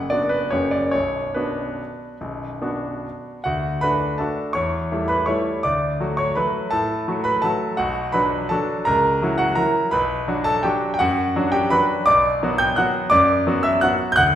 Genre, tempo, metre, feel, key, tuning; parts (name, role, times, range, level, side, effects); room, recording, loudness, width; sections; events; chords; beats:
classical, piano waltz; 138-178 BPM; 3/4; rubato; B minor, D major from 3.5 s; A4 = 439 Hz
bright concert grand piano; solo; 0.0-14.4 s; B0 to G6; -18 LUFS; equal
wet recital hall reverb, RT60 1.3 s; recorded in a church or concert hall; -18 LUFS; side -10 dB against mid
0.0-3.5 A section; 3.5-14.4 B section
0.0 Bm/F#; 0.5 F#; 0.9 Bm; 3.5 D; 4.6 A7/E; 5.7 D; 7.8 Bm; 8.9 F#7/C#; 9.9 Bm
0.11 0.52 | 0.94 1.36 1.79 | 2.21 2.62 3.04 | 3.45 3.82 4.19 | 4.55 4.91 5.28 | 5.66 6.01 6.38 | 6.73 7.08 7.44 | 7.79 8.14 8.51 | 8.87 9.22 9.58 | 9.93 10.28 10.64 | 11.00 11.35 11.71 | 12.07 12.42 12.78 | 13.12 13.47 13.83 | 14.18